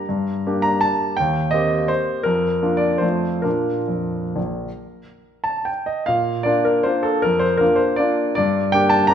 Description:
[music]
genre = classical, piano waltz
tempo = 128-175 BPM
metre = 3/4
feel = rubato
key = Bb major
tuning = A4 = 440 Hz
[part]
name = clear baby grand piano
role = solo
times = 0.0-9.1 s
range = Bb1 to Bb5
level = -17 LUFS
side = equal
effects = none
[sound]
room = moderate recital hall reverb, RT60 1.5 s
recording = none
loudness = -17 LUFS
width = side -8 dB against mid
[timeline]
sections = 0.0-6.1 A section; 6.1-9.1 A section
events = none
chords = 0.0 Gm; 1.2 Cm7/Eb; 2.3 Bb/F; 3.0 F; 3.5 Bb; 8.4 Gm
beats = | 0.08 0.45 0.81 | 1.17 1.52 1.89 | 2.25 2.62 3.03 | 3.46 3.90 4.37 | 4.81 5.25 5.68 | 6.11 6.49 6.89 | 7.25 7.62 8.01 | 8.38 8.75 9.11

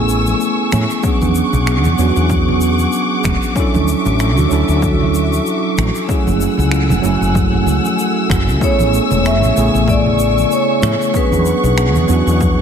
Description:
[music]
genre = sunset chillout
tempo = 95 BPM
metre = 4/4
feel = swing 56% on 16ths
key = A major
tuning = A4 = 440 Hz
[part]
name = tine electric piano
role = accompaniment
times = 0.0-12.6 s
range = C#3 to A4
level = -17 LUFS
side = right 1 dB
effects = auto-pan, ping-pong delay
[part]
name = dark studio string section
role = sustained chords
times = 0.0-12.6 s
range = A3 to E6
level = -21 LUFS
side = equal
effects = none
[part]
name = woody fretless electric bass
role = bass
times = 0.0-12.6 s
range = E1 to A2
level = -16 LUFS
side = equal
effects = none
[part]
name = shaker and finger snaps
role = drums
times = 0.1-12.6 s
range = none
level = -27 LUFS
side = left 1 dB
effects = none
[part]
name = congas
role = percussion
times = 0.3-12.6 s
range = none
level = -25 LUFS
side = right 2 dB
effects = none
[part]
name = electronic kick drum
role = drums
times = 1.0-12.6 s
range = none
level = -19 LUFS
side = equal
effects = overdrive
[part]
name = vibraphone with medium hard mallets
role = melody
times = 8.6-12.6 s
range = B4 to E5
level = -18 LUFS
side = equal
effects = ping-pong delay
[sound]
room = moderate lush hall reverb, RT60 1.7 s, studio ambience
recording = dreamy mix soaked in reverb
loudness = -12 LUFS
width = side -7 dB against mid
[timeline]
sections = 0.0-12.6 A section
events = none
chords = 0.0 Amaj7; 1.0 E13; 3.6 Dmaj9; 6.1 F#m9; 8.6 Amaj7; 11.1 E13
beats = 0.41 | 1.04 1.67 2.30 2.94 | 3.57 4.20 4.83 5.46 | 6.09 6.72 7.36 7.99 | 8.62 9.25 9.88 10.52 | 11.15 11.78 12.41

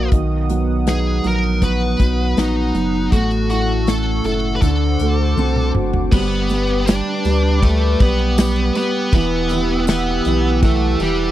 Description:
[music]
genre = pop ballad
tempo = 80 BPM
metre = 4/4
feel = straight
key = G major from 6.1 s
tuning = A4 = 439 Hz
[part]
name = high-gain lead guitar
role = melody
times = 0.0-11.3 s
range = G3 to D5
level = -22 LUFS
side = equal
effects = distortion
[part]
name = dark baby grand piano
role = accompaniment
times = 0.0-11.3 s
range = D3 to A#4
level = -21 LUFS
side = right 4 dB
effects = none
[part]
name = warm analog pad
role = sustained chords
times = 0.0-11.3 s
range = B3 to E6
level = -25 LUFS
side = left 1 dB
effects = chorus
[part]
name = picked steel-string acoustic guitar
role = arpeggios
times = 0.0-6.7 s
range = A2 to A4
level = -28 LUFS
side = left 12 dB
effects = none
[part]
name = saturated sub bass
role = bass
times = 0.0-11.3 s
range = E1 to D2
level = -20 LUFS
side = equal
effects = none
[part]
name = natural country drum kit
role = drums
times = 0.1-11.2 s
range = crash cymbal, hi-hat, kick drum, ride cymbal, snare drum, toms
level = -17 LUFS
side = equal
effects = none
[part]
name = tambourine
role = percussion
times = 6.1-11.2 s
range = none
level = -37 LUFS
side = left 8 dB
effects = none
[sound]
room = small room reverb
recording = dry, close 1970s-style studio recording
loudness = -15 LUFS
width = side -13 dB against mid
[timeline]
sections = 0.0-6.1 A section; 6.1-11.3 B section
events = drum fill 5.4-6.1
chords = 0.1 B; 3.1 A6; 4.6 D7; 6.1 G; 9.1 Emadd9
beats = | 0.12 0.88 1.62 2.38 | 3.12 3.88 4.62 5.38 | 6.12 6.88 7.62 8.38 | 9.12 9.88 10.62

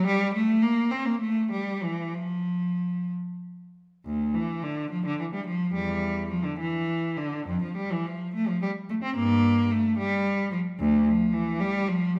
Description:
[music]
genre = classical, baroque-style suite movement for unaccompanied cello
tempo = 61-75 BPM (dotted quarters)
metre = 6/8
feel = rubato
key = F major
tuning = A4 = 445 Hz
[part]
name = rich cello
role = solo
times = 0.0-12.2 s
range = D2 to C4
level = -27 LUFS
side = equal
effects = none
[sound]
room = wet recital hall reverb, RT60 1.4 s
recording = none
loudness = -27 LUFS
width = mono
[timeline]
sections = 0.0-4.0 A section; 4.0-12.2 A section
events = none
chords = none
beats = | 0.34 1.20 | 2.15 3.10 | 4.05 4.91 | 5.73 6.58 | 7.47 8.33 | 9.16 9.98 | 10.79 11.60

